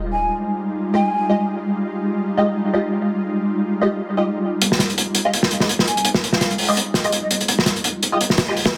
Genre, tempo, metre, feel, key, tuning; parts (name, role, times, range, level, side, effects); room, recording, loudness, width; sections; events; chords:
drum and bass, jungle; 167 BPM; 4/4; swing 54% on 16ths; F minor; A4 = 439 Hz
ethereal airy pad; sustained chords; 0.0-8.8 s; G3 to F4; -25 LUFS; equal; ensemble chorus, built-in reverb
breathy mellow jazz flute; melody; 0.1-1.4, 5.9-7.4 s; Eb5 to Ab5; -28 LUFS; equal; dub echo
band-passed chord stab; stabs; 0.9-8.5 s; Ab3 to Eb5; -25 LUFS; equal; phaser, ensemble chorus, dub echo
crunchy breakbeat drum kit; drums; 4.6-8.7 s; hi-hat, snare drum; -20 LUFS; equal
moderate plate reverb, RT60 1.9 s, studio reverb; dense, heavily limited modern master; -20 LUFS; mono
0.0-8.8 A section
filter sweep on synth stab 0.0-8.8
0.0 Fm9